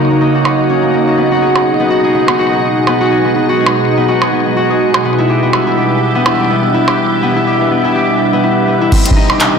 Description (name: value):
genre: IDM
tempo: 124 BPM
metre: 4/4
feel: swing 56% on 16ths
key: unclear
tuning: A4 = 440 Hz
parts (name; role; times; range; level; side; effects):
- icy glass pad; sustained chords; 0.0-9.6 s; Cb3 to Eb5; -14 LUFS; right 2 dB; chorus, built-in reverb
- concert harp; arpeggios; 0.0-9.6 s; Bb3 to Ab4; -14 LUFS; left 3 dB; ping-pong delay
- bubbling stepped-filter texture; texture; 0.0-9.6 s; Eb4 to E5; -19 LUFS; right 2 dB; chorus, built-in reverb
- glitchy drum kit; drums; 0.5-9.5 s; crash cymbal, handclaps, hi-hat, percussion blips; -16 LUFS; right 3 dB; low-pass filter on perc, low-pass filter on cymbals, low-pass filter on hats, low-pass filter on snare, low-pass filter on room, ping-pong delay
- electronic kick drum; drums; 8.9-9.2 s; none; -11 LUFS; right 1 dB; none
room: wet digital room reverb, RT60 1.1 s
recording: blown-out, overdriven recording, overdrive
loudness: -10 LUFS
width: side -6 dB against mid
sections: 0.0-8.9 A section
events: none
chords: 0.0 Ebm7; 1.2 Abm7; 5.0 Em7; 8.9 Cm